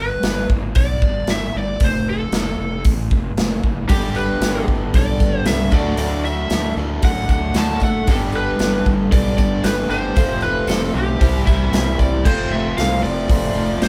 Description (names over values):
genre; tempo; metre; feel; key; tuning
classic rock; 115 BPM; 4/4; straight; G mixolydian; A4 = 440 Hz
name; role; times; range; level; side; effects
lead guitar through a small cranked amp; melody; 0.0-13.9 s; G4 to A5; -26 LUFS; equal; overdrive
fuzz fingered electric bass; bass; 0.0-13.9 s; F1 to F#2; -25 LUFS; equal; overdrive
big rock drum kit; drums; 0.2-13.9 s; crash cymbal, hi-hat, kick drum, snare drum; -22 LUFS; equal; none
fingerpicked twelve-string acoustic guitar; accompaniment; 3.9-13.9 s; C3 to A4; -33 LUFS; equal; none
overdriven electric guitar; riff; 3.9-13.9 s; F2 to E4; -28 LUFS; equal; none
overdriven electric guitar; riff; 3.9-13.9 s; F2 to G4; -26 LUFS; equal; none
tambourine; percussion; 3.9-12.1 s; none; -42 LUFS; equal; none
room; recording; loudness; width
light reverb; band playing live in one room; -18 LUFS; mono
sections
0.0-12.3 A section; 12.3-13.9 B section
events
none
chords
0.0 G; 1.8 F; 3.9 Gadd9; 5.7 Dadd9; 8.1 Gadd9; 10.2 F; 11.2 C; 12.3 F